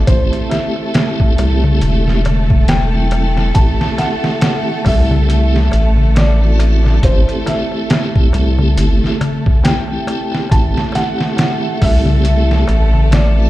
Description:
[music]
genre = trip hop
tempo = 69 BPM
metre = 4/4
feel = swing 58% on 16ths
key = A dorian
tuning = A4 = 440 Hz
[part]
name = felt-muted upright piano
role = melody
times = 0.0-13.5 s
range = C5 to A5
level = -23 LUFS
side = equal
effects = dub echo
[part]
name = tonewheel organ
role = accompaniment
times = 0.0-13.5 s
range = F#3 to G4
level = -21 LUFS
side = right 2 dB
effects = chorus vibrato, fast rotary speaker, tremolo, tape echo
[part]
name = warm studio violin section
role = sustained chords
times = 0.0-13.5 s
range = A3 to A4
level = -23 LUFS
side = left 1 dB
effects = none
[part]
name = round analog bass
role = bass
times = 0.0-13.5 s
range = E1 to C2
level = -13 LUFS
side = equal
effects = none
[part]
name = trip hop sampler-style drum kit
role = drums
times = 0.1-13.4 s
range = hi-hat, kick drum, snare drum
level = -16 LUFS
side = equal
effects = overdrive, small room ambience
[part]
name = darbuka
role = percussion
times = 0.1-13.5 s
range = none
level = -23 LUFS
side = left 3 dB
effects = none
[sound]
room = small room ambience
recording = played on a big sound system in a bare room, large studio reverb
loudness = -11 LUFS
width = side -16 dB against mid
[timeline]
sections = 0.0-13.5 A section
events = none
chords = 0.0 Am7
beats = | 0.08 0.95 1.82 2.69 | 3.56 4.43 5.29 6.17 | 7.03 7.90 8.77 9.64 | 10.51 11.38 12.25 13.12

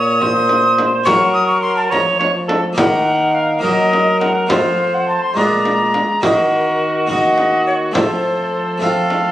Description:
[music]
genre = classical, renaissance-style consort dance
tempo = 70 BPM (dotted quarters)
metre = 6/8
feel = straight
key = Bb harmonic minor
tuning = A4 = 443 Hz
[part]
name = alto recorder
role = melody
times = 0.0-9.3 s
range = Bb4 to Eb6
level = -17 LUFS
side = left 1 dB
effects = none
[part]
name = mellow cor anglais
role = second line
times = 0.0-9.3 s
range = Gb4 to D5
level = -18 LUFS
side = right 1 dB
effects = none
[part]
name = harpsichord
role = accompaniment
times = 0.0-9.3 s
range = Bb2 to Bb4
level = -21 LUFS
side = equal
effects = none
[part]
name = dark trombone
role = bass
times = 0.0-9.3 s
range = Bb2 to Gb3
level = -22 LUFS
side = equal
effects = none
[part]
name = frame drum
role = percussion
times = 0.2-9.3 s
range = none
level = -21 LUFS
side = equal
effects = none
[sound]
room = moderate large studio reverb, RT60 1.3 s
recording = recorded on a phone in the room, club reverb, compression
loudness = -13 LUFS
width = side -13 dB against mid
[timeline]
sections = 0.0-6.2 A section; 6.2-9.3 B section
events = none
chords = 0.0 Bbm; 1.1 Gb; 2.8 Ebm; 4.5 F; 5.4 Bb7; 6.2 Ebm; 7.9 F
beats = 0.21 | 1.06 1.91 | 2.77 3.62 | 4.49 5.36 | 6.23 7.09 | 7.95 8.81

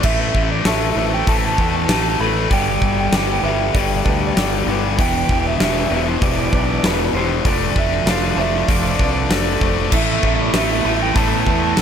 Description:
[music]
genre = post-rock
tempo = 97 BPM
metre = 4/4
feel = straight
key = A minor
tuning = A4 = 440 Hz
[part]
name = electric guitar through a small old amp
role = melody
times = 0.0-11.8 s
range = B4 to B5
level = -23 LUFS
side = right 5 dB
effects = digital delay
[part]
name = dark studio string section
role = sustained chords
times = 0.0-11.8 s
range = B2 to A4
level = -30 LUFS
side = right 5 dB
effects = none
[part]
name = electric guitar through a small old amp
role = arpeggios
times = 0.0-11.8 s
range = E2 to A4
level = -28 LUFS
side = left 1 dB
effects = tremolo, digital delay
[part]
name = mellow electric guitar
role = arpeggios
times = 0.0-11.8 s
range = A4 to C6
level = -32 LUFS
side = right 12 dB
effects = none
[part]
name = overdriven electric guitar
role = riff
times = 0.0-11.8 s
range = E2 to D4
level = -21 LUFS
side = left 8 dB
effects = none
[part]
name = fuzz fingered electric bass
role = bass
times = 0.0-11.8 s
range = E1 to E2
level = -22 LUFS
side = equal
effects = overdrive
[part]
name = huge arena drum kit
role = drums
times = 0.0-11.8 s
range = crash cymbal, hi-hat, kick drum, snare drum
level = -20 LUFS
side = equal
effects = none
[part]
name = cranked stack guitar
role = riff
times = 9.9-11.8 s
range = A3 to A4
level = -23 LUFS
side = right 15 dB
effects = overdrive
[sound]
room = studio reverb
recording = none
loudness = -15 LUFS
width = side -8 dB against mid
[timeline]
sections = 0.0-11.8 A section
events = none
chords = 0.0 Asus2; 2.5 G; 5.0 Em7; 7.5 Dm/F; 9.9 Asus2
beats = | 0.04 0.66 1.28 1.90 | 2.51 3.13 3.75 4.37 | 4.98 5.60 6.22 6.83 | 7.45 8.07 8.69 9.30 | 9.92 10.54 11.16 11.78

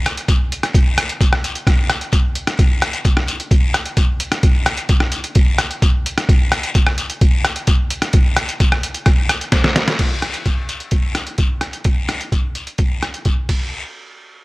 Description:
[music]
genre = calypso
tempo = 130 BPM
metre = 4/4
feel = straight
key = none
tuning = none
[part]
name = guiro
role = percussion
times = 0.0-13.9 s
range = none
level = -26 LUFS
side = left 4 dB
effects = none
[part]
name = trip hop sampler-style drum kit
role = drums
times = 0.1-13.6 s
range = crash cymbal, hi-hat, kick drum, ride cymbal, rim click, snare drum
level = -15 LUFS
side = equal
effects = none
[sound]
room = little or no reverb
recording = none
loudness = -15 LUFS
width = side -22 dB against mid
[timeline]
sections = 0.0-10.0 A section; 10.0-13.7 B section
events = drum fill 9.5-10.0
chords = none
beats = 0.28 | 0.74 1.21 1.67 2.13 | 2.59 3.05 3.51 3.98 | 4.44 4.90 5.36 5.82 | 6.29 6.75 7.21 7.67 | 8.14 8.60 9.07 9.53 | 9.99 10.46 10.93 11.39 | 11.86 12.33 12.79 13.26 | 13.73

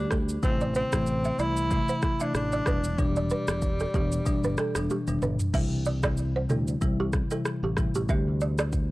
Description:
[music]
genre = afrobeats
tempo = 94 BPM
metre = 4/4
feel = swing 55% on 16ths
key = unclear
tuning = A4 = 440 Hz
[part]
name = warm tenor saxophone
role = melody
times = 0.0-4.9 s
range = G3 to E4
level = -31 LUFS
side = equal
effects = tape echo
[part]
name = marimba with medium mallets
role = accompaniment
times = 0.0-8.7 s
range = B2 to G4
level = -30 LUFS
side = left 1 dB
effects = none
[part]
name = fingered electric bass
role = bass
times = 0.0-8.9 s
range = E1 to D2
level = -30 LUFS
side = equal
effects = none
[part]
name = balafon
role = riff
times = 0.1-8.7 s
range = G4 to E5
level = -33 LUFS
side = right 3 dB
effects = tape echo
[part]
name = afro-pop drum kit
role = drums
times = 0.1-8.9 s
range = crash cymbal, kick drum, rim click, shaker, toms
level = -29 LUFS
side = equal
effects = none
[sound]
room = small room ambience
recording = dry, gritty hardware recording, transformer saturation, cassette tape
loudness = -24 LUFS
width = side -19 dB against mid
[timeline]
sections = 0.0-5.5 A section; 5.5-8.9 B section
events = drum fill 4.9-5.5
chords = 0.4 Am; 2.7 Em7; 5.5 C; 8.1 Dsus4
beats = | 0.43 1.07 1.71 2.35 | 2.98 3.62 4.26 4.90 | 5.54 6.18 6.82 7.45 | 8.09 8.73

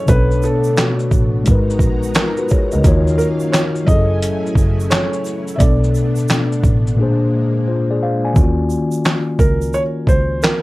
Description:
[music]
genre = lo-fi hip hop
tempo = 87 BPM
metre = 4/4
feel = swing 65% on 16ths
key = unclear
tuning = A4 = 440 Hz
[part]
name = felt-muted upright piano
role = melody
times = 0.0-10.6 s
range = F#4 to Fb5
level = -22 LUFS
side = right 1 dB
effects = analog delay, plate reverb
[part]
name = mellow tine electric piano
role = accompaniment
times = 0.0-10.6 s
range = Bb2 to Ab5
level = -18 LUFS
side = left 2 dB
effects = cassette tape
[part]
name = string machine, cellos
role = sustained chords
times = 0.0-8.3 s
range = Eb3 to Bb5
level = -28 LUFS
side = right 1 dB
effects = ensemble chorus
[part]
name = rich double bass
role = bass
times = 0.1-10.4 s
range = Gb1 to Eb2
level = -18 LUFS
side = equal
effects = none
[part]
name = dusty soul sampler-style drum kit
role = drums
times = 0.1-10.6 s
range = handclaps, hi-hat, kick drum, shaker, snare drum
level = -15 LUFS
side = equal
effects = overdrive, vintage 12-bit sampler grit
[part]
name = egg shaker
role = percussion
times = 0.1-10.6 s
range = none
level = -37 LUFS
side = right 7 dB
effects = none
[sound]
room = light reverb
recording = cassette tape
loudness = -13 LUFS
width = side -19 dB against mid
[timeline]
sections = 0.0-8.4 A section; 8.4-10.6 B section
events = drums muted 7.0-8.4; hi-hats muted 8.4-10.6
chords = 0.1 Bm9; 1.5 Abm9; 2.8 Ebm9; 3.9 Gbm9; 5.6 Bm7; 7.0 Bb7; 8.4 Ebm9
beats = | 0.08 0.77 1.46 2.15 | 2.84 3.53 4.22 4.91 | 5.60 6.29 6.98 7.67 | 8.36 9.05 9.74 10.43

